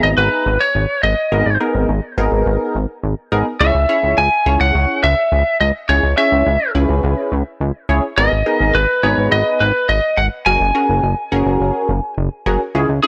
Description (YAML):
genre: synth-pop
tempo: 105 BPM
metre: 4/4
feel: straight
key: G# minor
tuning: A4 = 443 Hz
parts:
  - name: lightly driven lead guitar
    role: melody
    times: 0.0-13.1 s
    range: G#4 to G#5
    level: -18 LUFS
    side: equal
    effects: none
  - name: funky polysynth comp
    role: accompaniment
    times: 0.0-13.1 s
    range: B3 to A#5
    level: -22 LUFS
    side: equal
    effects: chorus
  - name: chorused synth bass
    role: bass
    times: 0.0-13.0 s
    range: F#1 to C#2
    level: -20 LUFS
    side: equal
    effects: tube saturation
room: little or no reverb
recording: dry, gritty hardware recording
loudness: -16 LUFS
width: mono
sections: 0.0-12.7 A section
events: none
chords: 0.0 G#madd9; 3.6 C#m; 8.2 G#madd9; 10.5 F#add9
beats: 0.18 0.75 | 1.32 1.89 2.46 3.03 | 3.60 4.18 4.75 5.32 | 5.89 6.46 7.03 7.61 | 8.18 8.75 9.32 9.89 | 10.46 11.03 11.61 12.18 | 12.75